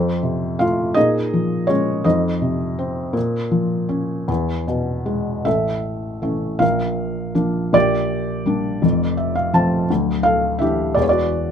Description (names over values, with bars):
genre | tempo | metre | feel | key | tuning
classical, lyrical solo piano | 51-57 BPM (dotted quarters) | 6/8 | rubato | Bb minor | A4 = 440 Hz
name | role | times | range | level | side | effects
felt-muted upright piano | solo | 0.0-11.5 s | D1 to A5 | -17 LUFS | equal | none
room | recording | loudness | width
light reverb | close, detailed microphones | -17 LUFS | side -8 dB against mid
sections
0.0-5.5 A section; 5.5-11.5 B section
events
felt piano fill 8.8-9.9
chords
0.0 F; 1.0 Bbm7; 2.1 F7; 3.2 Bbm; 4.3 E; 5.5 A; 6.6 Bb; 7.7 Gm/Bb; 8.8 F; 9.9 Dsus2; 11.0 E7(no3)